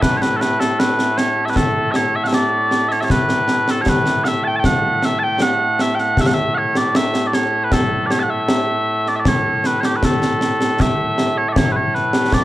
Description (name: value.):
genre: scottish traditional, Scottish pipe music.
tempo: 78 BPM.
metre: 2/4.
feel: straight.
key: A major.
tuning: A4 = 436 Hz.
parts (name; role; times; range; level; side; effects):
mellow small bagpipes; melody; 0.0-12.4 s; A2 to A5; -17 LUFS; equal; none.
concert snare drum and concert bass drum; drums; 0.0-12.4 s; none; -19 LUFS; equal; none.
room: moderate spring reverb, RT60 2.6 s.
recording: dark, warm production.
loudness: -15 LUFS.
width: side -16 dB against mid.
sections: 0.0-10.8 A section; 10.8-12.4 B section.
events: none.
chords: none.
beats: | 0.03 0.80 | 1.57 2.33 | 3.10 3.87 | 4.64 5.41 | 6.18 6.95 | 7.72 8.49 | 9.26 10.03 | 10.80 11.57 | 12.34.